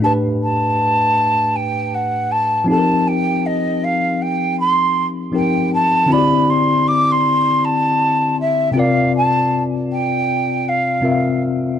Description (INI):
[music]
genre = R&B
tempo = 79 BPM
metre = 4/4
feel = swing 61% on 16ths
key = unclear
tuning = A4 = 440 Hz
[part]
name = breathy mellow jazz flute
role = melody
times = 0.0-11.4 s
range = Eb5 to D6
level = -17 LUFS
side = right 1 dB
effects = none
[part]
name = tine electric piano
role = accompaniment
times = 0.0-11.8 s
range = A2 to F5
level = -18 LUFS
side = left 3 dB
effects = overdrive, fast stereo tremolo
[sound]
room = moderate studio ambience, RT60 0.5 s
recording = nothing above 10.9 kHz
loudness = -14 LUFS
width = side -9 dB against mid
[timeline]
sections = 0.0-11.8 A section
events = none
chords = 0.0 A9sus4; 2.7 F9sus4; 6.1 D9sus4; 8.7 C9sus4